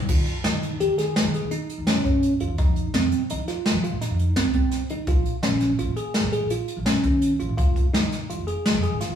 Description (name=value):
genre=progressive instrumental, band music in an uneven meter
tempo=168 BPM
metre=7/4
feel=straight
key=unclear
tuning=A4 = 440 Hz
part: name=bell-like tine electric piano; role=arpeggios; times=0.0-9.2 s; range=C4 to Ab4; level=-25 LUFS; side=right 1 dB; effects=phaser
part: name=upright bass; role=bass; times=0.1-9.2 s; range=F1 to F3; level=-28 LUFS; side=right 1 dB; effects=none
part: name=jazz brush drum kit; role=drums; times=0.1-9.1 s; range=crash cymbal, hi-hat, kick drum, snare drum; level=-23 LUFS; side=equal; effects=none
room=moderate stone room reverb, RT60 1.0 s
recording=rough rehearsal-room recording, studio reverb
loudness=-20 LUFS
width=side -9 dB against mid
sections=0.1-9.2 A section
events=none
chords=0.1 Eb7sus4; 2.6 F7(no3); 5.1 Bbm7; 7.6 Fm7